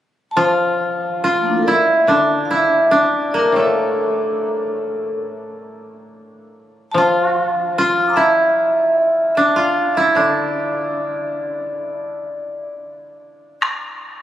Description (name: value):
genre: japanese traditional, Japanese chamber music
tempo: 65-77 BPM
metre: 4/4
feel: rubato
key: D hirajoshi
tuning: A4 = 440 Hz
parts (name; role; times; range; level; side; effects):
- vibraphone with medium hard mallets; melody; 0.3-12.7 s; F3 to F6; -18 LUFS; equal; none
- koto; second line; 0.4-12.7 s; A3 to F4; -18 LUFS; right 1 dB; none
- koto; accompaniment; 0.4-12.7 s; A2 to F3; -24 LUFS; left 3 dB; none
- taiko ensemble; percussion; 13.6-13.8 s; none; -21 LUFS; equal; none
room: moderate cathedral reverb, RT60 5.0 s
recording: recorded on a phone in the room, studio ambience, compression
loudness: -15 LUFS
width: side -12 dB against mid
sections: 0.4-13.6 A section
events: none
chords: none